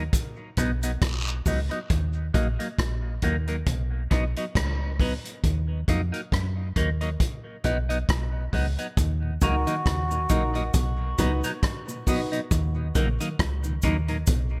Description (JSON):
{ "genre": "dub reggae", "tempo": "68 BPM", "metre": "4/4", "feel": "swing 57% on 16ths", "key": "Eb minor", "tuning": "A4 = 441 Hz", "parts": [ { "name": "clean electric guitar", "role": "accompaniment", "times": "0.0-14.2 s", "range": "F#3 to D#4", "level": "-34 LUFS", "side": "equal", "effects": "phaser, dub echo" }, { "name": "deep dub fingered electric bass", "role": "bass", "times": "0.0-14.6 s", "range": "Bb1 to Gb2", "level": "-29 LUFS", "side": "equal", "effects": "none" }, { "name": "vintage drum kit", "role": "drums", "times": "0.1-14.5 s", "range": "hi-hat, kick drum, rim click", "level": "-29 LUFS", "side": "equal", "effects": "none" }, { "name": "cabasa and guiro", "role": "percussion", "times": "0.1-1.7, 9.0-14.5 s", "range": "none", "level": "-39 LUFS", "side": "equal", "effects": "dub echo" }, { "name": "mellow tonewheel organ", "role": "accompaniment", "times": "9.2-14.6 s", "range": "Eb2 to Eb4", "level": "-39 LUFS", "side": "equal", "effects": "none" }, { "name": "melodica", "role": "melody", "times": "9.4-10.8 s", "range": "Gb4", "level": "-35 LUFS", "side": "equal", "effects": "dub echo" }, { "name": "semi-hollow electric guitar", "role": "arpeggios", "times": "9.4-14.5 s", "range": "Ab2 to Eb3", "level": "-39 LUFS", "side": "equal", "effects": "none" }, { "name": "warm grand piano", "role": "stabs", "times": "9.4-12.3 s", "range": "Eb4 to B4", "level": "-36 LUFS", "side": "equal", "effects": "dub echo" } ], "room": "light reverb", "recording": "none", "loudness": "-26 LUFS", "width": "mono", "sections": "0.0-9.0 A section; 9.0-14.6 B section", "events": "break 0.0-9.0; part muted 1.9-9.0", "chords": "0.1 B; 1.9 Ebm; 3.7 B; 5.4 Ebm; 7.2 B; 9.0 Ebm; 10.7 B; 12.5 Ebm", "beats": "0.13 1.01 | 1.90 2.78 3.67 4.55 | 5.44 6.32 7.21 8.09 | 8.97 9.86 10.74 11.63 | 12.51 13.39 14.28" }